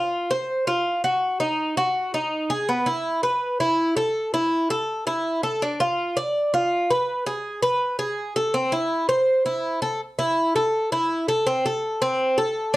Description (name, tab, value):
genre	latin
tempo	164 BPM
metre	4/4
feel	straight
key	A harmonic minor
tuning	A4 = 439 Hz
part	Cuban tres	solo	0.0-12.8 s	B3 to D5	-21 LUFS	equal	none
room	wet studio reverb, RT60 0.6 s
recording	dark, warm production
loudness	-21 LUFS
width	side -18 dB against mid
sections	0.0-10.0 A section; 10.0-12.8 B section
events	none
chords	none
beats	0.12 0.49 0.86 | 1.22 1.59 1.96 2.32 | 2.69 3.05 3.42 3.79 | 4.15 4.52 4.88 5.25 | 5.62 5.98 6.35 6.71 | 7.08 7.45 7.81 8.18 | 8.54 8.91 9.28 9.64 | 10.01 10.37 10.74 11.10 | 11.46 11.83 12.19 12.56